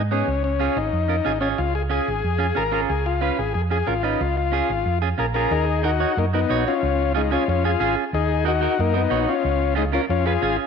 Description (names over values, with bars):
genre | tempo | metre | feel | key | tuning
latin | 183 BPM | 4/4 | straight | unclear | A4 = 440 Hz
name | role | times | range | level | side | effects
combo organ | melody | 0.0-10.6 s | Ab3 to Bb4 | -22 LUFS | left 8 dB | none
hollow-body short-scale fingered electric bass | bass | 0.0-10.6 s | Ab1 to Ab2 | -24 LUFS | right 2 dB | none
clean electric guitar | accompaniment | 0.1-10.7 s | Cb4 to Db5 | -26 LUFS | right 11 dB | none
room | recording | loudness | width
moderate echo chamber reverb, RT60 1.8 s, digital ambience | 1960s-style stereo with parts hard left and right | -19 LUFS | side -6 dB against mid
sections
0.0-5.5 A section; 5.5-10.7 B section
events
none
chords
0.3 Db; 5.5 Ebm; 6.8 Db; 8.1 Ebm; 9.4 Db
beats
| 0.28 0.61 0.93 1.26 | 1.59 1.92 2.24 2.57 | 2.90 3.23 3.55 3.88 | 4.21 4.54 4.86 5.19 | 5.52 5.84 6.17 6.50 | 6.83 7.15 7.48 7.81 | 8.13 8.46 8.79 9.12 | 9.44 9.77 10.10 10.43